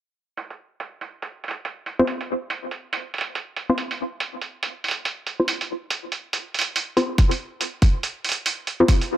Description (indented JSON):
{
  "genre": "deep dubstep",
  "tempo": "141 BPM",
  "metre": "4/4",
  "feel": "swing 62% on 16ths, half-time",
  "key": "unclear",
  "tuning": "A4 = 438 Hz",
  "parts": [
    { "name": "electronic hi-hat", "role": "drums", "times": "0.4-9.1 s", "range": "none", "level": "-26 LUFS", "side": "right 4 dB", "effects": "low-pass filter on hats" },
    { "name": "filtered dub chord stab", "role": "stabs", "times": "2.0-8.8 s", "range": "C4 to C5", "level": "-22 LUFS", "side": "left 1 dB", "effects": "chorus, dub echo" },
    { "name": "electronic kick drum", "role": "drums", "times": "7.2-9.0 s", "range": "none", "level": "-16 LUFS", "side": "equal", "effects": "none" }
  ],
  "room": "moderate spring reverb, RT60 1.2 s, digital ambience",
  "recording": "none",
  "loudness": "-22 LUFS",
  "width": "side -12 dB against mid",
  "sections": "0.4-9.2 A section",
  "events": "filter sweep on drum 0.4-9.2",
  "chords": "0.4 F5",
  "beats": "| 0.37 0.80 1.23 1.65 | 2.08 2.50 2.93 3.35 | 3.78 4.20 4.63 5.05 | 5.48 5.91 6.33 6.76 | 7.18 7.61 8.03 8.46 | 8.88"
}